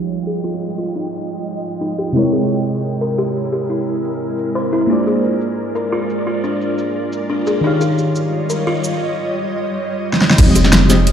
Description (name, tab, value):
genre	liquid drum and bass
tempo	175 BPM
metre	4/4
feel	straight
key	F minor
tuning	A4 = 440 Hz
part	mellow FM electric piano	accompaniment	0.0-11.0 s	C3 to G5	-20 LUFS	equal	chorus, phaser, cassette tape, digital delay
part	ethereal airy pad	sustained chords	0.0-11.1 s	G3 to G5	-22 LUFS	right 2 dB	ensemble chorus, built-in reverb
part	downlifter	sound effects	0.0-2.2 s	none	-46 LUFS	right 2 dB	none
part	buzzing kalimba	arpeggios	0.3-10.7 s	D4 to C5	-22 LUFS	left 2 dB	low-pass filter, digital delay
part	pop drum kit	drums	0.3-11.1 s	cabasa, crash cymbal, hi-hat, snare drum	-14 LUFS	equal	overdrive
part	long sustained 808-style bass	bass	10.4-11.1 s	F1	-14 LUFS	equal	none
part	electronic kick drum	drums	10.4-10.5 s	none	-11 LUFS	equal	overdrive
room	wet lush hall reverb, RT60 1.9 s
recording	played on a big sound system in a bare room, large studio reverb, low-pass filter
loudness	-15 LUFS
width	side -8 dB against mid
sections	0.0-10.4 A section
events	filter sweep on kalimba 0.0-10.4; filter sweep 0.0-10.4; drum fill 10.1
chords	0.0 Fm9; 2.2 C7b9b13; 4.9 Bb7; 7.6 Eb9; 10.4 Fm9